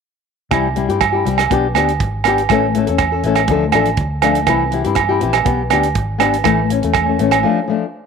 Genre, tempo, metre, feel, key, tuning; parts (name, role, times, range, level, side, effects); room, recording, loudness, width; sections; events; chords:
highlife guitar band; 121 BPM; 4/4; straight; C major; A4 = 440 Hz
flamenco guitar; accompaniment; 0.5-7.9 s; E3 to A4; -17 LUFS; left 9 dB
vintage muted fingered electric bass; bass; 0.5-7.4 s; Ab1 to G2; -21 LUFS; equal
tight funk drum kit; drums; 0.5-7.4 s; hi-hat, kick drum, rim click; -24 LUFS; right 4 dB
agogo bells; percussion; 0.5-7.4 s; -17 LUFS; right 12 dB
moderate spring reverb, RT60 1.4 s; 1960s-style stereo with parts hard left and right; -13 LUFS; side -6 dB against mid
0.5-8.1 A section
break 7.4-8.1
0.5 C; 1.5 G/B; 2.5 A; 3.5 Dm; 4.5 C; 5.5 G/B; 6.5 A; 7.4 Dm